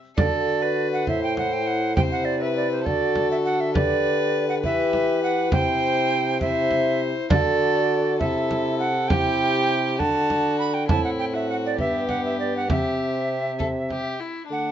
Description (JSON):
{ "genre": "classical, renaissance-style consort dance", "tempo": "67 BPM (dotted quarters)", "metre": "6/8", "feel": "straight", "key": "D mixolydian", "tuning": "A4 = 440 Hz", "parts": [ { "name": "warm violin", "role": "melody", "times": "0.2-14.7 s", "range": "D4 to C5", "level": "-28 LUFS", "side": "left 6 dB", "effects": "none" }, { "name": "mellow tenor recorder", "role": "second line", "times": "0.2-14.7 s", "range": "C5 to B5", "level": "-24 LUFS", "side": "right 4 dB", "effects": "none" }, { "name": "mellow trombone", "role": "accompaniment", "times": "0.2-14.7 s", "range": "A3 to G4", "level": "-28 LUFS", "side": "left 2 dB", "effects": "none" }, { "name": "dark bassoon", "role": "bass", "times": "0.2-14.7 s", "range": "G2 to E3", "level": "-27 LUFS", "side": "right 1 dB", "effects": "none" }, { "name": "frame drum", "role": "percussion", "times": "0.2-14.2 s", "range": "none", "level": "-25 LUFS", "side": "right 1 dB", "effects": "none" } ], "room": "moderate stone room reverb, RT60 1.1 s", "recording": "nothing above 7.5 kHz", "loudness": "-20 LUFS", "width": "side -10 dB against mid", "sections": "0.2-14.5 A section", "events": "none", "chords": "0.2 D; 1.1 Am; 2.0 C; 2.9 D; 3.8 G/D; 4.6 Em; 5.5 C; 7.3 D; 8.2 Am/C; 10.0 D; 10.9 Am; 11.8 G; 12.7 C", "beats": "| 0.18 1.08 | 1.97 2.86 | 3.76 4.64 | 5.53 6.42 | 7.31 8.21 | 9.10 9.99 | 10.89 11.79 | 12.69 13.60 | 14.50" }